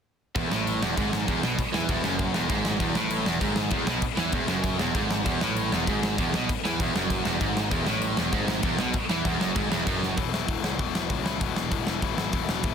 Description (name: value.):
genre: punk rock.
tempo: 195 BPM.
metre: 4/4.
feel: straight.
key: E major.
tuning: A4 = 440 Hz.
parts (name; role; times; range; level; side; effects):
heavy high-gain guitar; riff; 0.4-10.2 s; E2 to E3; -32 LUFS; equal; distortion.
overdriven electric guitar; riff; 0.4-10.2 s; E2 to E3; -29 LUFS; right 10 dB; none.
tight distorted guitar; riff; 0.4-12.7 s; E2 to E3; -30 LUFS; left 13 dB; distortion.
fuzz picked electric bass; bass; 0.4-12.7 s; E1 to E2; -33 LUFS; equal; overdrive.
big rock drum kit; drums; 0.4-12.7 s; crash cymbal, hi-hat, kick drum, snare drum; -28 LUFS; equal; none.
room: little or no reverb.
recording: dense, heavily limited modern master.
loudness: -24 LUFS.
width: side -7 dB against mid.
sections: 0.4-10.2 A section; 10.2-12.7 B section.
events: drum fill 10.0.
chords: 0.4 E; 10.2 E5.